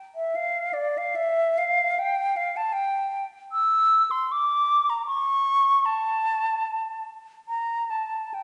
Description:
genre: classical, free, expressive piece for unaccompanied flute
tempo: 76 BPM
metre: 3/4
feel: uneven beats, rubato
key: unclear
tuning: A4 = 439 Hz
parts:
  - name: mellow silver concert flute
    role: solo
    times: 0.2-8.4 s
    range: D5 to E6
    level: -24 LUFS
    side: equal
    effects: none
room: wet scoring stage reverb, RT60 1.6 s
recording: heard from further back in the room, nothing above 11.0 kHz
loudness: -24 LUFS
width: mono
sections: 0.0-8.4 A section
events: none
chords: none

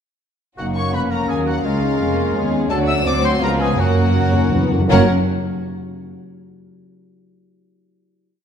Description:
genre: quick classical-period movement for symphony orchestra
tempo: 167 BPM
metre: 3/4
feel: uneven beats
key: F# major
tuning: A4 = 440 Hz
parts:
  - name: warm studio violin section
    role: melody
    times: 0.6-5.1 s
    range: E#5 to E6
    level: -27 LUFS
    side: left 6 dB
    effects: none
  - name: mellow clarinet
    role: second line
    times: 0.6-5.1 s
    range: A#3 to D4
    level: -27 LUFS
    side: left 4 dB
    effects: none
  - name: rich studio violin section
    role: second line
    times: 0.6-5.1 s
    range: C#4 to D5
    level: -27 LUFS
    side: left 2 dB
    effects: none
  - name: silver concert flute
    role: second line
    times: 0.6-5.1 s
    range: C#5 to E6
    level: -29 LUFS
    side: left 1 dB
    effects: none
  - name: warm oboe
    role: second line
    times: 0.6-5.1 s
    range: E#4 to E5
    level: -29 LUFS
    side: right 1 dB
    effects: none
  - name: dark studio viola section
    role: accompaniment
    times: 0.6-5.1 s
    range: F#3 to C#4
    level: -24 LUFS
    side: right 1 dB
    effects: none
  - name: mellow bassoon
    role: accompaniment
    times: 0.6-5.1 s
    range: E#3 to A#3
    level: -26 LUFS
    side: right 2 dB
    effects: none
  - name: mellow French horn section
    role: sustained chords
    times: 0.6-5.0 s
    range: E#3 to D4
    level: -25 LUFS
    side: left 5 dB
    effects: none
  - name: dark studio cello section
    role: bass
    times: 0.6-5.1 s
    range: C#2 to F#2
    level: -24 LUFS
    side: right 3 dB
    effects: none
  - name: dark studio double bass section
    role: bass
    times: 0.6-5.1 s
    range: E#1 to D#2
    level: -23 LUFS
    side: right 3 dB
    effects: none
  - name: timpani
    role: percussion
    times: 3.8-5.1 s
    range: F#2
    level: -22 LUFS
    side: equal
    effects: none
room: wet scoring stage reverb, RT60 1.9 s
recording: dark, warm production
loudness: -15 LUFS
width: side -8 dB against mid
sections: 0.6-4.9 A section; 4.9-6.0 final chord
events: timpani fill 3.8-4.9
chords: 0.6 F#; 1.7 C#7; 2.7 D; 3.1 D7; 3.4 C#7; 3.8 F#

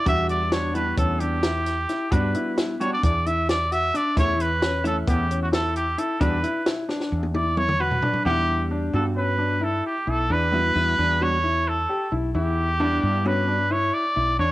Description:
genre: progressive instrumental, band music in an uneven meter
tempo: 264 BPM (eighths)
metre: 9/8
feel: straight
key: E dorian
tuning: A4 = 440 Hz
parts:
  - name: clear trumpet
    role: melody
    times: 0.0-14.5 s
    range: F#4 to E5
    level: -24 LUFS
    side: right 1 dB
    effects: cassette tape
  - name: vintage hollow-body jazz guitar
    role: accompaniment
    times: 0.1-13.6 s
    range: E3 to F#5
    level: -28 LUFS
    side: equal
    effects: none
  - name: warm grand piano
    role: arpeggios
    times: 0.1-14.5 s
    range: B3 to G4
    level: -28 LUFS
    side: left 3 dB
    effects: none
  - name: woody fretless electric bass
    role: bass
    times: 0.1-14.5 s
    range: B1 to G2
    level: -26 LUFS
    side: equal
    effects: wide subtle chorus
  - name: compact cocktail drum kit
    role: drums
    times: 0.1-8.2 s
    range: hi-hat, kick drum, snare drum, toms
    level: -26 LUFS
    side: equal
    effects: cassette tape
room: moderate small room reverb, RT60 0.5 s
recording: home recording on cassette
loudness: -20 LUFS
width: side -17 dB against mid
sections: 0.0-8.3 A section; 8.3-14.5 B section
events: trumpet solo 0.0-8.3; drum fill 6.9-8.3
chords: 0.1 Em9; 4.2 A/E; 6.2 E7sus2; 8.3 Em7

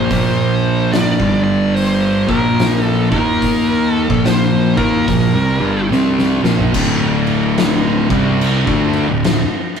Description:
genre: stoner and doom metal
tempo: 72 BPM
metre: 4/4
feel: swing 63% on 8ths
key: D phrygian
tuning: A4 = 443 Hz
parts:
  - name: fuzz lead guitar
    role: melody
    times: 0.0-5.9 s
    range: Bb4 to D5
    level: -20 LUFS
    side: equal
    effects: wah, distortion
  - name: thick fuzz guitar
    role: riff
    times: 0.0-9.4 s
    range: D2 to Eb4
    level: -18 LUFS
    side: left 5 dB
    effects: distortion
  - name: thick fuzz guitar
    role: riff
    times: 0.0-9.4 s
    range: D2 to Eb4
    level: -16 LUFS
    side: right 4 dB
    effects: distortion
  - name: fuzz picked electric bass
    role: bass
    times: 0.0-9.5 s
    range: D1 to Eb2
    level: -24 LUFS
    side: equal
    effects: overdrive
  - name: oversized low-tuned drum kit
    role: drums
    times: 0.1-9.8 s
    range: crash cymbal, hi-hat, kick drum, snare drum, toms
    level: -20 LUFS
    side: left 2 dB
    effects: none
room: light reverb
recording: rough rehearsal-room recording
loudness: -12 LUFS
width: side -7 dB against mid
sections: 0.0-6.7 A section; 6.7-9.8 B section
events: drum fill 5.9-6.7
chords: 0.0 Bb5; 1.1 G5; 2.2 Bb5; 3.0 Eb5; 4.0 Bb5; 6.7 D5

